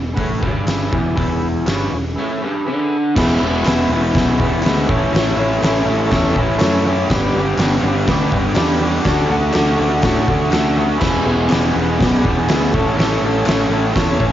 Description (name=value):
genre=garage rock duo or trio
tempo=122 BPM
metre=4/4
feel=straight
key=unclear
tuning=A4 = 441 Hz
part: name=crunchy overdriven guitar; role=riff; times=0.0-14.3 s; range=E2 to A4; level=-17 LUFS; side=equal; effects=cassette tape
part: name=growling fingered electric bass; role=bass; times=0.0-14.3 s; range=E1 to A2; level=-21 LUFS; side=equal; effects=overdrive
part: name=combo organ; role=sustained chords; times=0.1-14.3 s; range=F#4 to F#5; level=-25 LUFS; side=left 1 dB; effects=cassette tape
part: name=oversized low-tuned drum kit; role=drums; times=0.2-14.3 s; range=crash cymbal, hi-hat, kick drum, snare drum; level=-19 LUFS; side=equal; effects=cassette tape
part: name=group handclap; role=percussion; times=0.7-13.6 s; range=none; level=-32 LUFS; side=left 3 dB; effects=none
room=studio ambience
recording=home recording on cassette, nothing above 7.5 kHz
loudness=-14 LUFS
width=side -12 dB against mid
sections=0.0-3.2 A section; 3.2-14.3 B section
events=none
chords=0.0 E; 4.9 A; 7.1 G; 9.1 D; 11.0 E; 12.7 A